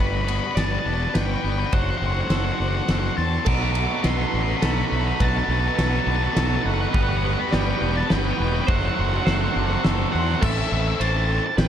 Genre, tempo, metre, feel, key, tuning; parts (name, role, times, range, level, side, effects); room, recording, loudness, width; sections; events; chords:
post-rock; 104 BPM; 3/4; straight; G major; A4 = 441 Hz
octave-fuzz lead guitar; melody; 0.0-11.7 s; E5 to D6; -28 LUFS; right 1 dB; distortion
muted studio string section; sustained chords; 0.0-11.7 s; D3 to B5; -36 LUFS; right 1 dB
twangy electric guitar; arpeggios; 0.0-10.4 s; B2 to A4; -34 LUFS; left 2 dB; spring reverb, digital delay
twelve-string electric guitar; arpeggios; 0.0-11.7 s; B3 to D5; -34 LUFS; right 4 dB; spring reverb, digital delay
tight distorted guitar; riff; 0.0-11.5 s; A2 to C5; -29 LUFS; left 15 dB; distortion
fuzz fingered electric bass; bass; 0.0-11.7 s; E1 to E2; -24 LUFS; equal; overdrive
big rock drum kit; drums; 0.0-11.7 s; crash cymbal, kick drum, ride cymbal, snare drum; -25 LUFS; equal
tight distorted guitar; riff; 3.5-10.4 s; B2 to B3; -29 LUFS; right 15 dB; distortion
small room ambience; dark, warm production; -20 LUFS; side -9 dB against mid
0.0-10.4 A section; 10.4-11.7 B section
build-up 0.0-10.4
0.0 Gmaj7; 1.7 D7/F#; 3.5 Bm7; 6.9 Gmaj7; 8.7 D7/F#; 10.4 Amadd9